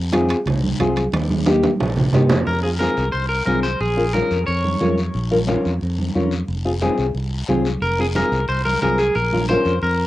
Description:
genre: latin, cumbia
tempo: 179 BPM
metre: 4/4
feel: straight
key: F minor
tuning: A4 = 440 Hz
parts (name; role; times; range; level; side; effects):
- fingered electric bass; bass; 0.0-10.1 s; F1 to G2; -23 LUFS; equal; none
- nylon-string guitar; accompaniment; 0.1-9.7 s; Bb3 to Bb4; -20 LUFS; left 2 dB; cassette tape
- congas; percussion; 0.1-10.0 s; none; -23 LUFS; right 2 dB; none
- guiro; percussion; 0.1-10.1 s; none; -35 LUFS; left 5 dB; none
- timbales; percussion; 0.1-2.4 s; none; -26 LUFS; right 4 dB; none
- electric guitar at the edge of break-up; melody; 2.5-4.9, 7.8-10.1 s; Ab4 to Db5; -21 LUFS; equal; spring reverb, cassette tape
room: moderate booth ambience, RT60 0.3 s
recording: home recording on cassette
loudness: -17 LUFS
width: side -16 dB against mid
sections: 0.0-2.5 A section; 2.5-10.1 B section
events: drum fill 1.1-2.5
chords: 0.0 Fm; 1.1 Eb; 2.5 Fm; 3.8 Bbm; 6.5 Fm; 9.2 Bbm

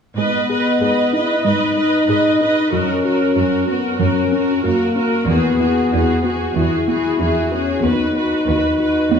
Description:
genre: cinematic, hybrid orchestral and electronic film score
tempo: 94 BPM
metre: 4/4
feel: straight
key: G# minor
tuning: A4 = 439 Hz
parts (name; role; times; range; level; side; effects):
- rich symphonic viola section; accompaniment; 0.2-9.2 s; F#4 to D#5; -20 LUFS; right 2 dB; none
- dark French horn section; sustained chords; 0.2-9.2 s; A#3 to F#4; -18 LUFS; left 3 dB; none
- tight sequenced synth; arpeggios; 0.2-9.2 s; E3 to B4; -24 LUFS; right 1 dB; chorus
- clear symphonic cello section; bass; 0.2-9.2 s; D#2 to G#2; -23 LUFS; right 3 dB; none
room: wet recital hall reverb, RT60 1.7 s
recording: recorded in a church or concert hall, studio reverb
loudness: -15 LUFS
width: side -7 dB against mid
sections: 0.2-9.2 A section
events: none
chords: 0.2 G#m; 2.7 F#; 5.3 Eadd9; 7.8 B/D#

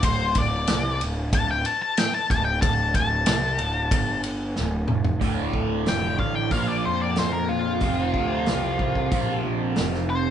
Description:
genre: blues rock power trio and southern rock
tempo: 92 BPM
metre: 4/4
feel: straight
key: D minor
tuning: A4 = 440 Hz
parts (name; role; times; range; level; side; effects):
- octave-fuzz lead guitar; melody; 0.0-10.3 s; F4 to A5; -25 LUFS; left 4 dB; distortion
- fuzz picked electric bass; bass; 0.0-10.3 s; D1 to F2; -27 LUFS; equal; overdrive
- vintage drum kit; drums; 0.0-10.0 s; hi-hat, kick drum, ride cymbal, snare drum, toms; -26 LUFS; right 1 dB; none
- cranked stack guitar; riff; 5.2-10.3 s; D2 to Bb3; -26 LUFS; right 2 dB; overdrive, phaser
room: light reverb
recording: band playing live in one room, nothing above 10.5 kHz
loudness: -21 LUFS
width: side -9 dB against mid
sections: 0.0-5.2 A section; 5.2-10.3 B section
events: lead electric guitar solo 0.0-5.2; drum fill 4.6-5.2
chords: 0.0 D5; 5.2 Dm; 6.5 Bb5; 7.8 F5

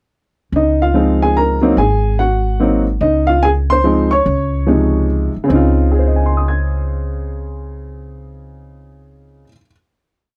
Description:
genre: jazz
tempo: 145 BPM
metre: 3/4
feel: swing 64% on 8ths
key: Db major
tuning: A4 = 440 Hz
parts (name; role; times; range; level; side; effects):
- upright bass; bass; 0.5-9.4 s; Ab1 to Db2; -19 LUFS; equal; none
- warm upright piano; melody; 0.6-9.7 s; C3 to Ab6; -17 LUFS; equal; none
room: little or no reverb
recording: dry, close 1970s-style studio recording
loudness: -15 LUFS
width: mono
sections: 0.5-5.5 A section; 5.5-8.0 final chord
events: none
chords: 0.5 Dbmaj9; 1.8 Ab7(no3); 3.0 Dbmaj9

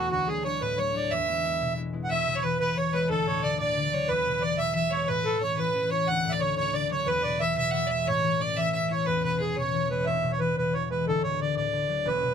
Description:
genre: celtic folk, Celtic jig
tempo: 121 BPM (dotted quarters)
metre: 6/8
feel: straight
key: E mixolydian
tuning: A4 = 440 Hz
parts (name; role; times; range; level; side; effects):
- accordion; melody; 0.0-12.3 s; F#4 to F#5; -27 LUFS; right 3 dB; none
- clear fiddle; second line; 0.0-10.1 s; F#4 to F#5; -31 LUFS; left 2 dB; none
- concert harp; accompaniment; 0.0-12.3 s; D1 to E4; -30 LUFS; left 5 dB; none
room: little or no reverb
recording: close, detailed microphones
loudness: -24 LUFS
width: side -7 dB against mid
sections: 0.0-2.1 A section; 2.1-10.1 B section; 10.1-12.3 B section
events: none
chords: 0.1 D; 1.1 E; 3.1 D; 4.1 E; 5.1 A; 6.1 D; 7.1 E; 8.1 A; 9.1 E; 11.1 D

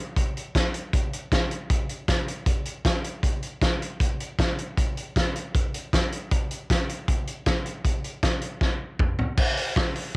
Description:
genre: rock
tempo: 156 BPM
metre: 4/4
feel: straight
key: none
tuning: none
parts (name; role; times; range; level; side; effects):
- loose indie drum kit; drums; 0.2-10.2 s; crash cymbal, hi-hat, kick drum, snare drum, toms; -23 LUFS; equal; cassette tape
room: moderate booth ambience, RT60 0.2 s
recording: home recording on cassette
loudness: -23 LUFS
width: side -26 dB against mid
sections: 0.0-9.4 A section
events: drum fill 8.6-9.4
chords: none

